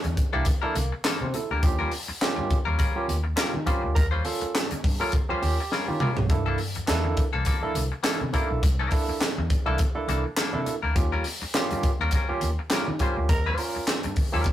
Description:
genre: funk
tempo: 103 BPM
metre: 4/4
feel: swing 56% on 16ths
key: unclear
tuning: A4 = 440 Hz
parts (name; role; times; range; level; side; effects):
- semi-hollow electric guitar; accompaniment; 0.0-14.5 s; E3 to C5; -31 LUFS; left 4 dB; none
- vintage muted picked electric bass; bass; 0.0-14.4 s; B1 to Eb3; -28 LUFS; equal; none
- crisp fusion drum kit; drums; 0.0-14.5 s; handclaps, hi-hat, kick drum, snare drum, toms; -25 LUFS; equal; none
- congas; percussion; 0.0-14.5 s; none; -39 LUFS; right 3 dB; none
- barky tine electric piano; stabs; 0.3-14.5 s; Bb3 to Db5; -30 LUFS; right 3 dB; overdrive, medium tremolo
- raspy tenor saxophone; second line; 4.0-4.1, 13.3-13.7 s; Bb4; -31 LUFS; right 2 dB; none
room: moderate studio reverb, RT60 0.5 s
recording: rough rehearsal-room recording, warm saturation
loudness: -23 LUFS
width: side -12 dB against mid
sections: 0.0-14.5 A section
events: band accent 4.0-6.3, 13.3-14.5; tine electric piano fill 5.1-6.3; drum fill 5.7-6.3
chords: 0.0 C13; 1.6 Eb9; 6.3 C13; 11.0 Eb9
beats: 0.47 1.05 | 1.63 2.22 2.80 3.38 | 3.97 4.55 5.13 5.72 | 6.30 6.88 7.46 8.05 | 8.63 9.21 9.79 10.38 | 10.96 11.54 12.13 12.71 | 13.29 13.88 14.46

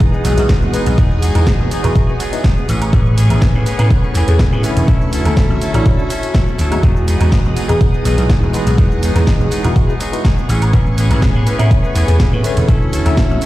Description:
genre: filtered disco house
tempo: 123 BPM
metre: 4/4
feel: straight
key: E major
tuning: A4 = 436 Hz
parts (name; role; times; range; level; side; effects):
- tine electric piano; accompaniment; 0.0-13.5 s; D3 to B4; -20 LUFS; equal; medium stereo tremolo, phaser, sidechain pumping
- string machine, full ensemble; sustained chords; 0.0-13.5 s; F#4 to D#6; -25 LUFS; right 1 dB; ensemble chorus, sidechain pumping
- direct-recorded clean electric guitar; riff; 0.0-13.5 s; E3 to A4; -24 LUFS; left 2 dB; sidechain pumping
- electronic kick drum; drums; 0.0-13.3 s; none; -13 LUFS; equal; none
- house drum kit; drums; 0.0-13.5 s; hi-hat, shaker, snare drum, woodblock; -25 LUFS; right 1 dB; sidechain pumping on hats, sidechain pumping on perc
- tambourine; percussion; 0.0-13.5 s; none; -36 LUFS; right 1 dB; sidechain pumping on perc
- sub drop; sound effects; 0.0-1.0 s; none; -26 LUFS; equal; none
- vintage slap bass; bass; 0.2-13.5 s; E1 to A2; -14 LUFS; equal; sidechain pumping
room: digital ambience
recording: played on a big sound system in a bare room, large studio reverb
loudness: -11 LUFS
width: side -16 dB against mid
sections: 0.0-13.5 A section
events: impact 0.0-1.0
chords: 0.0 Emaj9; 2.7 Amaj9; 4.9 Dmaj9; 6.8 Emaj9; 10.5 Amaj9; 12.7 Dmaj9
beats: 0.00 0.49 | 0.98 1.47 1.96 2.44 | 2.93 3.42 3.91 4.39 | 4.88 5.37 5.86 6.34 | 6.83 7.32 7.81 8.30 | 8.78 9.27 9.76 10.25 | 10.73 11.22 11.71 12.20 | 12.69 13.17

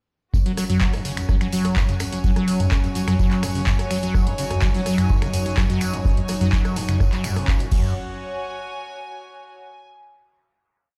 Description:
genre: acid house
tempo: 126 BPM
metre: 4/4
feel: straight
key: unclear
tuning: A4 = 440 Hz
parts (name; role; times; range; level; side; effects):
- warm analog pad; sustained chords; 0.3-7.9 s; F#2 to F#5; -32 LUFS; equal; chorus, tremolo, sidechain pumping
- liquid acid bass; riff; 0.3-7.9 s; F#2 to F#3; -27 LUFS; equal; subtle chorus, dub echo
- electronic kick drum; drums; 0.3-7.8 s; none; -23 LUFS; equal; none
- tambourine; percussion; 0.3-7.9 s; none; -41 LUFS; equal; none
- rich studio string section; texture; 0.3-9.8 s; F#4 to G#5; -36 LUFS; equal; sidechain pumping
- booming analog drum machine; drums; 0.5-7.8 s; crash cymbal, finger snaps, handclaps, hi-hat, rim click, toms; -29 LUFS; equal; none
room: little or no reverb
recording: played on a big sound system in a bare room, stone room reverb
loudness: -21 LUFS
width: mono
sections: 0.3-8.0 drop; 8.0-9.9 final note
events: drop 0.3-8.0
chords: 0.3 F#5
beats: | 0.34 0.81 1.29 1.77 | 2.24 2.72 3.19 3.67 | 4.15 4.62 5.10 5.58 | 6.05 6.53 7.00 7.48 | 7.96 8.43 8.91 9.38

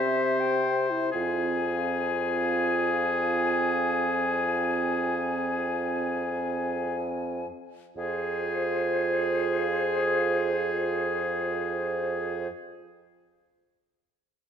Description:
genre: classical, slow romantic movement for wind quintet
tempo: free time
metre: none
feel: none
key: F minor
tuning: A4 = 440 Hz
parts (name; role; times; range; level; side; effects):
- silver concert flute; melody; 0.0-12.5 s; C5 to Ab5; -33 LUFS; left 7 dB; none
- clear oboe; second line; 0.0-12.5 s; Ab4 to C5; -29 LUFS; left 3 dB; none
- mellow clarinet; accompaniment; 0.0-12.5 s; C4 to Ab4; -35 LUFS; right 6 dB; none
- warm French horn; accompaniment; 0.0-12.5 s; E4 to G4; -34 LUFS; right 3 dB; none
- warm bassoon; bass; 0.0-12.5 s; F2 to C3; -30 LUFS; right 3 dB; none
room: moderate scoring stage reverb, RT60 1.8 s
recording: none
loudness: -25 LUFS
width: side -8 dB against mid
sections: 0.0-8.0 A section; 8.0-14.5 B section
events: slowing down 0.0-8.0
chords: 0.0 C; 1.1 Fm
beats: free time

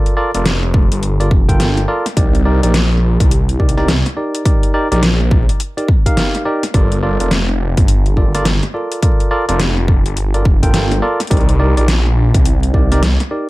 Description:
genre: glitch hop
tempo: 105 BPM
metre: 4/4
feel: swing 62% on 16ths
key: G minor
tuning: A4 = 440 Hz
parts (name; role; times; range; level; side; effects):
- bright tine electric piano; stabs; 0.0-13.5 s; Eb4 to G5; -19 LUFS; equal; sidechain pumping, ping-pong delay
- dubstep drum kit; drums; 0.1-13.3 s; hi-hat, snare drum; -20 LUFS; equal; none
- phased detuned saw bass; bass; 0.3-13.2 s; F1 to C2; -14 LUFS; equal; phaser
- electronic kick drum; drums; 0.7-12.9 s; none; -14 LUFS; equal; none
room: little or no reverb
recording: vinyl crackle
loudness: -12 LUFS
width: side -19 dB against mid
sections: 0.0-13.5 A section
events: none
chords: 0.0 Gm9; 2.2 Cm7; 6.7 Gm9; 11.3 Cm7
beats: 0.46 1.03 1.60 | 2.17 2.74 3.31 3.88 | 4.46 5.03 5.60 6.17 | 6.74 7.31 7.88 8.46 | 9.03 9.60 10.17 10.74 | 11.31 11.88 12.46 13.03

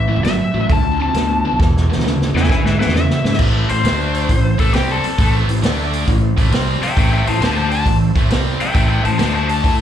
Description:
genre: blues rock power trio and southern rock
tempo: 134 BPM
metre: 4/4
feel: swing 67% on 8ths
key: A minor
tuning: A4 = 440 Hz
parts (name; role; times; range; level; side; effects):
- overdriven slide guitar; melody; 0.0-9.7 s; G4 to A5; -21 LUFS; left 4 dB; slapback echo, tape echo
- overdriven tonewheel organ; sustained chords; 0.0-9.8 s; A3 to D5; -32 LUFS; right 5 dB; none
- tight distorted guitar; riff; 0.0-9.8 s; E2 to A4; -20 LUFS; right 1 dB; distortion, slapback echo
- fuzz fingered electric bass; bass; 0.0-9.8 s; G1 to A2; -19 LUFS; equal; overdrive
- vintage drum kit; drums; 0.2-9.8 s; crash cymbal, hi-hat, kick drum, snare drum; -18 LUFS; equal; none
room: studio ambience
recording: live gig heard through the venue's PA, club ambience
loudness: -14 LUFS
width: side -10 dB against mid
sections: 0.0-3.4 A section; 3.4-9.8 B section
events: drum fill 1.6-3.4; electric slide guitar solo 3.4-9.8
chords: 0.0 Am9; 0.7 Dm9; 1.6 E7; 3.4 Am; 3.8 D5; 4.3 Am; 5.6 D5; 6.1 Am; 7.4 D5; 7.9 Am; 9.2 D5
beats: 0.24 0.69 1.14 | 1.59 2.04 2.49 2.94 | 3.39 3.84 4.29 4.74 | 5.18 5.63 6.08 6.52 | 6.97 7.42 7.86 8.31 | 8.75 9.20 9.65

